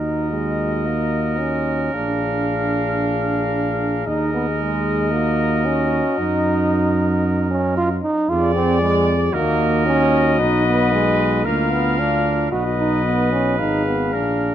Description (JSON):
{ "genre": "classical, brass quintet", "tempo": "113 BPM", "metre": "4/4", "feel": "rubato", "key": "Eb minor", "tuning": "A4 = 436 Hz", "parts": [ { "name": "clear cornet", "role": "melody", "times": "0.0-14.5 s", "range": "D5 to F5", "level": "-25 LUFS", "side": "left 10 dB", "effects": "none" }, { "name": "bright trumpet", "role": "second line", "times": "0.0-14.5 s", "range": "Bb4 to D5", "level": "-26 LUFS", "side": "right 5 dB", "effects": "none" }, { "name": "mellow French horn", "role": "accompaniment", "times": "0.0-14.5 s", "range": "F4 to Ab4", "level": "-26 LUFS", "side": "left 4 dB", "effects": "none" }, { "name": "warm trombone", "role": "accompaniment", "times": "0.0-14.5 s", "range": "Ab3 to F#4", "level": "-22 LUFS", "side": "right 2 dB", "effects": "none" }, { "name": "mellow tuba", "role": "bass", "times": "0.0-14.5 s", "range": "Ab1 to Gb2", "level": "-22 LUFS", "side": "right 3 dB", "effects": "none" } ], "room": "moderate recital hall reverb, RT60 1.8 s", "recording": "close, detailed microphones", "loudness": "-17 LUFS", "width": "side -10 dB against mid", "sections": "0.0-14.5 A section", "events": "none", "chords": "0.0 Ebm; 1.9 Bb7; 4.1 Ebm; 6.2 Ebm/Gb; 8.3 Ddim/F; 9.3 Ebm; 10.4 B; 11.5 Bb/D; 12.5 B; 13.6 Fm7b5/Ab", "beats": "0.31 0.86 1.40 | 1.94 2.48 3.01 3.54 | 4.07 4.60 5.13 5.65 | 6.19 6.71 7.25 7.77 | 8.29 8.81 9.34 9.87 | 10.40 10.93 11.45 11.98 | 12.52 13.06 13.59 14.13" }